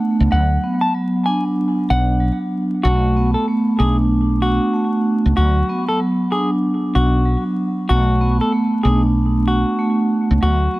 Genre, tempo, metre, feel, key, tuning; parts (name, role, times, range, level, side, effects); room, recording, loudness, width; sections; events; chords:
hip hop, boom-bap hip-hop; 95 BPM; 4/4; swing 63% on 16ths; B dorian; A4 = 440 Hz
semi-hollow electric guitar; melody; 0.0-10.8 s; F#4 to A5; -23 LUFS; left 1 dB; high-pass filter, low-pass filter, analog delay
vibraphone with soft mallets; accompaniment; 0.0-10.8 s; F#3 to D4; -18 LUFS; right 1 dB; high-pass filter, low-pass filter, analog delay
woody fretless electric bass; bass; 0.2-10.7 s; B1 to D2; -16 LUFS; equal; lush chorus
light reverb, small room ambience; echo-heavy mix, vinyl crackle; -15 LUFS; side -19 dB against mid
0.0-2.8 A section; 2.8-10.8 B section
0.3 D6; 2.8 Bm7; 5.4 D6; 7.9 Bm7